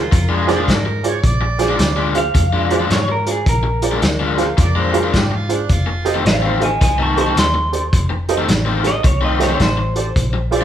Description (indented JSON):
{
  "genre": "electric blues shuffle",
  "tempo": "108 BPM",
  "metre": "4/4",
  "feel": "swing 64% on 8ths",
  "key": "Bb mixolydian",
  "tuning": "A4 = 438 Hz",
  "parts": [
    { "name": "electric guitar through a small old amp", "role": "melody", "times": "0.0-10.6 s", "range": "Ab4 to Db6", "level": "-22 LUFS", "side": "equal", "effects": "none" },
    { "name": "overdriven harmonica", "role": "second line", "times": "0.0-6.2, 10.6 s", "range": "D4 to F5", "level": "-25 LUFS", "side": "right 4 dB", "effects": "none" },
    { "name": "honky-tonk upright piano", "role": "accompaniment", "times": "0.0-10.6 s", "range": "F4 to F5", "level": "-21 LUFS", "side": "right 4 dB", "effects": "none" },
    { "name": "vintage muted fingered electric bass", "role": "bass", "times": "0.0-10.6 s", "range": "F1 to Ab2", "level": "-20 LUFS", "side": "equal", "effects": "none" },
    { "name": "overdriven electric guitar", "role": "riff", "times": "0.1-10.6 s", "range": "F2 to D4", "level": "-21 LUFS", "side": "left 4 dB", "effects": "none" },
    { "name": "vintage drum kit", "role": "drums", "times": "0.1-10.6 s", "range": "hi-hat, kick drum, snare drum", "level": "-19 LUFS", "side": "equal", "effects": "none" }
  ],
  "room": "moderate large studio reverb, RT60 1.1 s",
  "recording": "band playing live in one room",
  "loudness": "-14 LUFS",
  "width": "side -10 dB against mid",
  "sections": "0.0-10.6 A section",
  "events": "none",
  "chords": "0.0 Bb7; 5.7 F7"
}